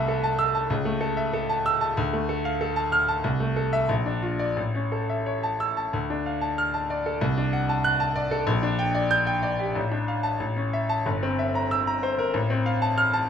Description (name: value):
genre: classical, virtuoso piano study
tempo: 94 BPM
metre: 2/4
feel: rubato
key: D minor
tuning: A4 = 442 Hz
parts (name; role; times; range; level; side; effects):
- bright grand piano; solo; 0.0-13.3 s; G1 to G6; -23 LUFS; equal; none
room: light reverb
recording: minimal, uncompressed stereo recording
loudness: -23 LUFS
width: side -8 dB against mid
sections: 0.0-5.9 A section; 5.9-13.3 B section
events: none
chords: 0.0 Am/C; 0.7 A/C#; 2.0 Dm; 3.2 Am/C; 3.9 Bb; 4.6 A; 5.9 Dm; 7.2 D7/C; 8.5 Gm/Bb; 9.8 Dm/A; 10.4 A; 11.1 C7/G; 12.3 F/A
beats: 0.08 | 0.70 1.33 | 1.97 2.60 | 3.24 3.90 | 4.57 5.26 | 5.93 6.58 | 7.21 7.85 | 8.48 9.11 | 9.76 10.41 | 11.07 11.71 | 12.35 12.97